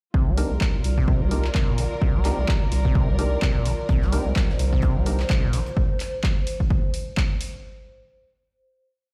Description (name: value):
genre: acid house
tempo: 128 BPM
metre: 4/4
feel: swing 56% on 16ths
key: C minor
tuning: A4 = 439 Hz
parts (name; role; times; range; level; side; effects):
- acid bass, saw; riff; 0.1-5.6 s; Bb2 to C4; -31 LUFS; equal; tube saturation, cassette tape, delay
- round analog bass; bass; 0.1-5.6 s; Bb1 to C2; -26 LUFS; equal; tube saturation, sidechain pumping
- electronic kick drum; drums; 0.1-7.3 s; none; -24 LUFS; equal; none
- warm studio string section; texture; 0.1-5.8 s; F4 to D5; -36 LUFS; equal; sidechain pumping
- percussive organ stab; stabs; 0.4-5.2 s; D4 to Bb4; -35 LUFS; equal; chorus, cassette tape, delay
- punchy analog drum machine; drums; 0.4-7.5 s; handclaps, hi-hat; -35 LUFS; equal; none
- warbly tape-like pad; sustained chords; 4.3-7.7 s; C5; -38 LUFS; equal; chorus, built-in reverb, sidechain pumping
- tight metal drum kit; drums; 3.9-5.8 s; hi-hat, snare drum; -45 LUFS; equal; none
room: small room ambience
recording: played on a big sound system in a bare room, stone room reverb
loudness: -22 LUFS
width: mono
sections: 0.1-7.6 groove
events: none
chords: 0.1 Cm7